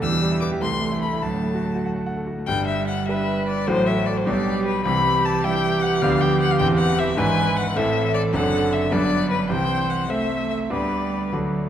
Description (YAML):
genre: quick classical-period movement for piano quartet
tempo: 94-105 BPM (dotted quarters)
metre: 6/8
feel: rubato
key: G major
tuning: A4 = 440 Hz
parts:
  - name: rich violin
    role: melody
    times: 0.0-11.3 s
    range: B4 to E6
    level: -25 LUFS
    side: left 6 dB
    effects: none
  - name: rich cello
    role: second line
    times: 0.0-11.7 s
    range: D3 to A3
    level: -26 LUFS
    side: right 5 dB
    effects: none
  - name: bright concert grand piano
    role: accompaniment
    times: 0.0-11.7 s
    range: E1 to A5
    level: -24 LUFS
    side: left 1 dB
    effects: none
  - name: rich viola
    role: accompaniment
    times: 0.0-11.6 s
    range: G3 to E5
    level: -26 LUFS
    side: right 3 dB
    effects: none
room: wet recital hall reverb, RT60 1.5 s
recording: dark, warm production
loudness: -19 LUFS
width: side -10 dB against mid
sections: 0.0-2.5 A section; 2.5-11.7 B section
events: none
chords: 0.0 Em; 0.6 Am/C; 1.2 D; 2.5 G; 3.7 F#dim/A; 4.3 G/B; 4.8 C; 6.0 Bdim/D; 6.6 C/E; 7.2 E7/G#; 7.8 Am; 8.3 D7/F#; 8.9 G; 9.5 Am/C; 10.7 G/D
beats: | 0.01 0.61 | 1.23 1.85 | 2.47 3.08 | 3.67 4.26 | 4.85 5.44 | 6.02 6.60 | 7.18 7.75 | 8.33 8.91 | 9.50 10.09 | 10.70 11.33